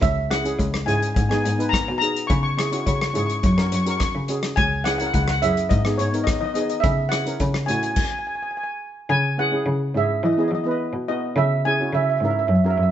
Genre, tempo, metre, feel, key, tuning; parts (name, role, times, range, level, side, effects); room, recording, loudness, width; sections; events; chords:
calypso; 106 BPM; 4/4; straight; A4 = 439 Hz
steel pan; melody; 0.0-12.9 s; C#5 to C#6; -24 LUFS; right 1 dB
steel pan; accompaniment; 0.0-12.8 s; B3 to B4; -27 LUFS; right 1 dB
rich cello; bass; 0.0-12.9 s; C#2 to E3; -23 LUFS; equal
natural country drum kit; drums; 0.0-8.1 s; crash cymbal, hi-hat, kick drum, rim click; -25 LUFS; left 1 dB
moderate stone room reverb, RT60 1.0 s; band playing live in one room, nothing above 7.9 kHz; -19 LUFS; side -10 dB against mid
0.0-9.1 A section; 9.1-12.9 A section
stop 8.0-9.1
0.0 C#m; 1.2 G#m; 2.3 C#m; 3.4 F#; 4.6 C#m; 5.7 G#madd9; 6.8 C#m; 8.0 N.C.; 9.1 C#m; 10.2 E; 11.4 C#m